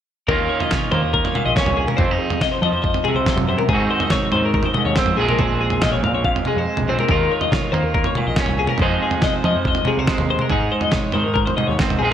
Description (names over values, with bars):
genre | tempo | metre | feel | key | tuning
math rock and midwest emo | 141 BPM | 4/4 | straight | Bb minor | A4 = 442 Hz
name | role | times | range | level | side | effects
electric guitar at the edge of break-up | accompaniment | 0.3-12.1 s | F2 to Ab4 | -22 LUFS | right 5 dB | none
twelve-string electric guitar | arpeggios | 0.3-12.1 s | Ab4 to F5 | -22 LUFS | left 6 dB | wide subtle chorus
growling picked electric bass | bass | 0.3-12.1 s | Bb1 to F3 | -23 LUFS | equal | overdrive
dusty soul sampler-style drum kit | drums | 0.3-12.0 s | kick drum, snare drum, toms | -21 LUFS | equal | overdrive, gated reverb
room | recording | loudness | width
light reverb, digital ambience | bright 1980s-style digital production | -16 LUFS | side -9 dB against mid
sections
0.3-12.1 A section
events
kick and snare drop out 6.7-7.1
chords
0.3 Ebsus2; 2.0 Fm7; 3.7 Ab7; 5.2 Bbm9; 8.8 Fm7; 10.5 Ab